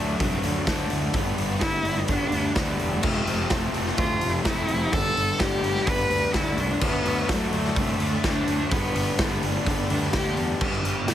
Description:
quiet-loud alternative rock; 127 BPM; 4/4; straight; G major; A4 = 438 Hz
rich cello; melody; 0.0-10.3 s; F#3 to B4; -27 LUFS; equal; slapback echo, plate reverb
fuzz guitar; riff; 0.0-11.1 s; F2 to D4; -28 LUFS; left 1 dB; distortion
fuzz picked electric bass; bass; 0.0-11.1 s; E1 to G2; -30 LUFS; right 1 dB; overdrive
raw garage drum kit; drums; 0.2-11.1 s; crash cymbal, hi-hat, kick drum, snare drum; -26 LUFS; equal
clean electric guitar; arpeggios; 10.6-11.1 s; G2 to G4; -30 LUFS; right 4 dB; harmonic tremolo
light reverb; heavily compressed radio sound; -22 LUFS; side -11 dB against mid
0.0-10.6 A section
cello solo 0.0-10.6
0.0 D; 1.1 G; 3.0 F; 4.9 G; 6.8 D6; 8.7 G

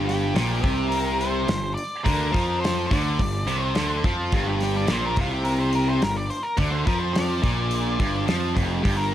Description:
classic rock; 106 BPM; 4/4; straight; G minor; A4 = 443 Hz
octave-fuzz lead guitar; melody; 0.0-9.1 s; F4 to D5; -29 LUFS; left 1 dB; distortion, slapback echo
tight distorted guitar; riff; 0.0-9.1 s; F2 to F3; -25 LUFS; equal; distortion
fuzz picked electric bass; bass; 0.0-9.1 s; F1 to F2; -26 LUFS; equal; overdrive
damped 70s drum kit; drums; 0.1-9.0 s; hi-hat, kick drum, snare drum; -26 LUFS; equal
studio reverb; -21 LUFS; side -12 dB against mid
0.0-9.1 A section
0.0 Gm

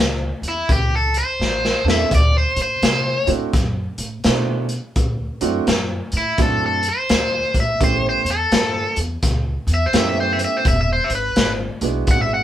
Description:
electric blues shuffle; 84 BPM; 4/4; swing 63% on 8ths; A4 = 440 Hz
upright bass; bass; 0.0-12.4 s; E1 to C3; -23 LUFS; equal
crunchy breakbeat drum kit; drums; 0.4-12.3 s; hi-hat, kick drum, snare drum; -20 LUFS; left 1 dB
biting overdriven guitar; melody; 0.5-12.4 s; E4 to F#5; -20 LUFS; left 1 dB
clear upright piano; accompaniment; 1.8-12.4 s; G#3 to C5; -23 LUFS; right 6 dB
light reverb; band playing live in one room; -16 LUFS; side -11 dB against mid
0.0-12.4 A section
overdriven electric guitar solo 0.0-12.4; drum fill 1.4-2.1
0.0 A; 2.1 D7; 7.8 A7; 10.6 E7

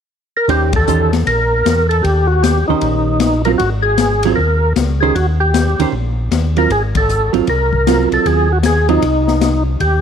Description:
soul jazz organ trio; 154 BPM; 4/4; swing 64% on 8ths; Eb mixolydian; A4 = 439 Hz
overdriven tonewheel organ; melody; 0.4-10.0 s; Eb4 to Bb4; -16 LUFS; equal; slow rotary speaker, chorus vibrato
hollow-body jazz guitar; accompaniment; 0.5-9.0 s; Eb3 to C5; -19 LUFS; right 12 dB
mellow tonewheel organ; bass; 0.5-10.0 s; Ab1 to Fb2; -16 LUFS; equal; slow rotary speaker
open jazz drum kit; drums; 0.5-9.9 s; hi-hat, kick drum, ride cymbal, snare drum; -20 LUFS; left 7 dB
light reverb, small room reverb; 1960s-style stereo with parts hard left and right; -12 LUFS; side -8 dB against mid
0.5-10.0 A section
band accent 0.7, 6.9
0.5 Eb13; 3.6 Abadd9; 5.2 Eb6; 6.7 Ab13

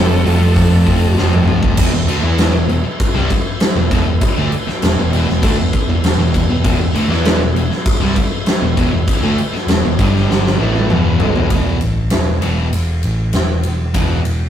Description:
hard rock; 99 BPM; 4/4; straight; E phrygian; A4 = 440 Hz
dark smooth lead guitar; melody; 0.0-1.1 s; A4; -23 LUFS; right 1 dB; overdrive
mellow tonewheel organ; sustained chords; 0.0-11.5 s; E3 to A5; -30 LUFS; equal; slow rotary speaker
crunchy overdriven guitar; riff; 0.0-14.2 s; E2 to E4; -22 LUFS; right 4 dB
high-gain distorted guitar; riff; 0.0-14.2 s; E2 to E4; -24 LUFS; left 5 dB; distortion
overdriven semi-hollow guitar; riff; 0.0-11.5 s; E2 to F4; -22 LUFS; equal
picked electric bass; bass; 0.0-14.5 s; E1 to F2; -17 LUFS; equal
big rock drum kit; drums; 0.3-14.4 s; crash cymbal, hi-hat, kick drum, ride cymbal, snare drum, toms; -16 LUFS; left 1 dB
moderate stone room reverb, RT60 1.0 s; rough rehearsal-room recording, tube saturation; -12 LUFS; side -10 dB against mid
0.0-1.8 A section; 1.8-11.5 B section; 11.5-14.5 C section
drum fill 1.2-1.8, 10.3-11.5
0.0 F; 1.8 E5; 10.0 G5; 10.6 Em; 11.5 E5

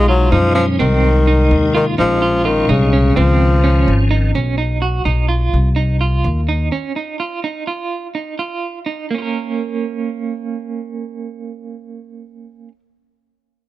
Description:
progressive instrumental, progressive; 253 BPM (eighths); 5/8; straight; Bb minor; A4 = 435 Hz
breathy tenor saxophone; melody; 0.0-4.1 s; Db3 to F#3; -16 LUFS; left 2 dB
tonewheel organ; accompaniment; 0.0-4.3 s; Bb2 to D#4; -21 LUFS; left 3 dB; overdrive, chorus vibrato, slow rotary speaker
electric guitar at the edge of break-up; arpeggios; 0.0-12.8 s; Bb3 to Bb4; -21 LUFS; right 6 dB; tremolo
upright bass; bass; 0.0-6.7 s; Ab1 to F#2; -15 LUFS; equal
small room ambience; dry, close 1970s-style studio recording; -14 LUFS; side -15 dB against mid
0.0-4.3 A section; 4.3-9.1 B section; 9.1-11.5 C section
0.0 B6; 0.8 Ab/C; 2.0 Bbm7; 3.2 Dbadd9; 4.3 B; 5.5 Cmadd11; 6.7 Dbadd9; 7.9 Ebsus2; 9.1 Bbm

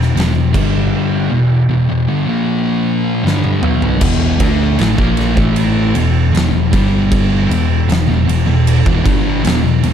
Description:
stoner and doom metal; 78 BPM; 4/4; straight; E minor; A4 = 438 Hz
thick fuzz guitar; riff; 0.0-9.9 s; E2 to D4; -16 LUFS; left 6 dB; distortion
thick fuzz guitar; riff; 0.0-9.9 s; E2 to D4; -18 LUFS; right 10 dB; distortion
overdriven picked electric bass; bass; 0.0-9.9 s; E1 to D2; -17 LUFS; equal
oversized low-tuned drum kit; drums; 0.0-9.9 s; crash cymbal, kick drum, ride cymbal, snare drum, toms; -18 LUFS; equal
light reverb, small room ambience; dark, warm production; -11 LUFS; side -8 dB against mid
0.0-4.0 A section; 4.0-9.9 A section
drum fill 3.2-4.0
0.0 E5; 0.5 G5; 1.3 Em; 2.3 A#5; 3.2 Gmaj7; 4.0 E5; 6.7 G5; 7.5 Em

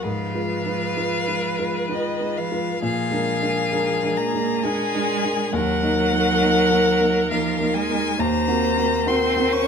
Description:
classical, slow romantic movement for piano quartet; 67 BPM; 3/4; rubato; Eb minor; A4 = 438 Hz
warm violin; melody; 0.0-9.7 s; Eb5 to Db6; -25 LUFS; left 4 dB
rich cello; second line; 0.0-9.7 s; Eb3 to Db4; -26 LUFS; right 8 dB
rich violin; second line; 0.0-9.7 s; Ab4 to C5; -27 LUFS; left 3 dB
dark concert grand piano; accompaniment; 0.0-9.7 s; Eb2 to Cb5; -23 LUFS; left 1 dB
moderate stone room reverb, RT60 1.2 s; minimal, uncompressed stereo recording; -19 LUFS; side -6 dB against mid
0.0-9.7 A section
0.0 Fdim/Ab; 2.8 Bb7; 5.5 Ebm; 8.2 Cm7b5/Eb

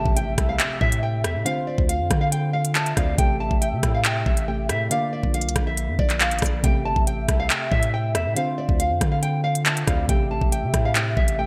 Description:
hip hop, drill; 139 BPM; 4/4; half-time; A phrygian; A4 = 441 Hz
nylon-string guitar; melody; 0.0-11.5 s; D5 to A5; -30 LUFS; equal; lush chorus, digital delay
warm velvety synth lead; second line; 0.0-11.5 s; C5 to E5; -34 LUFS; equal; chorus, digital delay
soft electric-piano-like synth keys; accompaniment; 0.0-11.5 s; C3 to G4; -33 LUFS; equal; chorus
long sustained 808-style bass; bass; 0.0-11.5 s; G1 to D3; -28 LUFS; equal
impact; sound effects; 0.0-1.5 s; -38 LUFS; equal
drill drum kit; drums; 0.1-11.4 s; handclaps, hi-hat, kick drum, rim click; -24 LUFS; equal; gated reverb
light reverb, digital ambience; bright 1980s-style digital production; -22 LUFS; mono
0.0-11.5 A section
impact 0.0-1.5
0.0 Am7; 1.5 Dm7; 3.2 Am7; 4.9 Bb; 6.6 Am7; 8.4 Dm7; 10.1 Am7

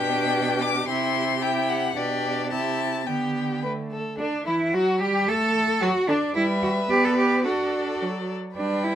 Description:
quick classical-period movement for string quartet; 110 BPM; 2/4; rubato; G major; A4 = 442 Hz
rich violin; melody; 0.0-9.0 s; D4 to D6; -29 LUFS; left 7 dB
rich violin; second line; 0.0-9.0 s; D4 to B4; -29 LUFS; left 2 dB
warm viola; accompaniment; 0.0-9.0 s; D3 to E4; -27 LUFS; right 2 dB
rich cello; bass; 0.0-9.0 s; B2 to A4; -25 LUFS; right 2 dB
moderate studio reverb, RT60 0.8 s; -21 LUFS; side -10 dB against mid
0.0-4.2 A section; 4.2-9.0 B section
0.0 G/B; 0.9 C; 2.0 G/B; 2.5 C; 3.1 G/D; 3.6 D5; 4.2 G5/D; 5.3 D/A; 6.4 G; 6.9 G/B; 7.5 D

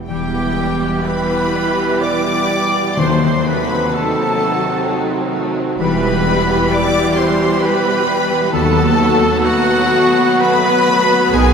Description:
classical, slow romantic movement for symphony orchestra; 60-67 BPM; 3/4; rubato; E minor; A4 = 440 Hz
concert harp; arpeggios; 0.0-11.5 s; B2 to B5; -23 LUFS; left 6 dB
clear studio violin section; melody; 0.1-11.5 s; F#5 to D6; -22 LUFS; left 4 dB
mellow flute section; second line; 0.1-11.5 s; F#4 to D5; -24 LUFS; left 2 dB
rich studio violin section; second line; 0.1-11.5 s; G3 to G#4; -24 LUFS; left 2 dB
warm oboe; second line; 0.1-11.5 s; F#4 to D5; -22 LUFS; right 2 dB
rich studio viola section; accompaniment; 0.1-11.5 s; D#3 to B3; -21 LUFS; right 2 dB
bright trombone section; sustained chords; 0.1-11.5 s; B2 to F#3; -25 LUFS; right 2 dB
mellow French horn section; sustained chords; 0.1-11.5 s; G3 to G#4; -25 LUFS; left 1 dB
clear trumpet section; stabs; 0.1-11.5 s; F#4 to D5; -21 LUFS; right 2 dB
warm studio cello section; bass; 0.1-11.5 s; D#2 to B2; -24 LUFS; right 3 dB
warm studio double bass section; bass; 0.1-11.5 s; E1 to D#2; -24 LUFS; right 3 dB
timpani; percussion; 3.0-4.4 s; D#3; -23 LUFS; left 3 dB
wet cathedral reverb, RT60 4.5 s; recorded in a church or concert hall; -13 LUFS; side -6 dB against mid
0.1-11.5 A section
0.1 Em; 3.0 D#dim7; 5.8 Em; 8.5 B7/D#

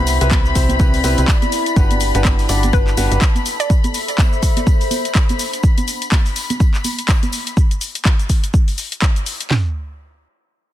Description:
piano house; 124 BPM; 4/4; swing 58% on 16ths; A4 = 439 Hz
muted studio string section; sustained chords; 0.0-7.6 s; B5; -25 LUFS; left 5 dB; vintage 12-bit sampler grit, sidechain pumping
clear upright piano; riff; 0.0-3.2 s; C4 to D5; -23 LUFS; equal; sidechain pumping, digital delay
solid FM bass; bass; 0.0-3.2 s; G1 to C2; -18 LUFS; equal; sidechain pumping
warbly tape-like pad; texture; 0.0-5.6 s; C4 to B5; -26 LUFS; left 1 dB; chorus, built-in reverb, sidechain pumping
house drum kit; drums; 0.1-9.5 s; handclaps, hi-hat, shaker; -23 LUFS; left 2 dB; overdrive
tambourine and congas; percussion; 0.1-7.5 s; -27 LUFS; right 4 dB
house drum kit; drums; 0.3-9.6 s; handclaps, kick drum, snare drum, toms; -14 LUFS; equal; overdrive
hollow square pluck; melody; 2.7-3.7 s; B4 to D5; -26 LUFS; right 1 dB; chorus, digital delay
little or no reverb; dense, heavily limited modern master; -14 LUFS; side -13 dB against mid
0.0-9.5 A section; 9.5-10.7 B section
drop 0.0-9.5
0.0 Cmaj7; 1.8 Gmaj7; 3.5 Am; 7.6 N.C.

